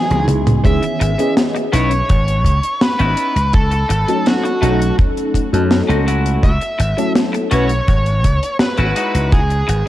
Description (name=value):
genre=vaporwave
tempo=83 BPM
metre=4/4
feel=straight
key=unclear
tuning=A4 = 438 Hz
part: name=smooth overdriven lead guitar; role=melody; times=0.0-9.9 s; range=F#4 to E5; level=-21 LUFS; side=equal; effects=tape echo
part: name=mellow FM electric piano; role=accompaniment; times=0.0-7.7 s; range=D#3 to D#5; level=-20 LUFS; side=left 1 dB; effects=ensemble chorus, analog delay
part: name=slap bass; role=bass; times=0.1-9.8 s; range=G#1 to F#2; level=-17 LUFS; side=equal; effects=none
part: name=deep reggae drum kit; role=drums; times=0.1-9.8 s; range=hi-hat, snare drum, toms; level=-19 LUFS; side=equal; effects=small room ambience, gated reverb
part: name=kick drum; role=drums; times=0.6-9.5 s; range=none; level=-14 LUFS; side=equal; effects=small room ambience
part: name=clean electric guitar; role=riff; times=0.8-9.9 s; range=G#3 to F#4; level=-23 LUFS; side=left 1 dB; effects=wide subtle chorus, analog delay
room=light reverb, small room reverb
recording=cassette tape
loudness=-13 LUFS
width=side -14 dB against mid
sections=0.6-9.9 A section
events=drum fill 0.0-0.6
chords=0.0 Emaj9; 3.5 D#m7b5; 6.1 A6; 9.0 Emaj9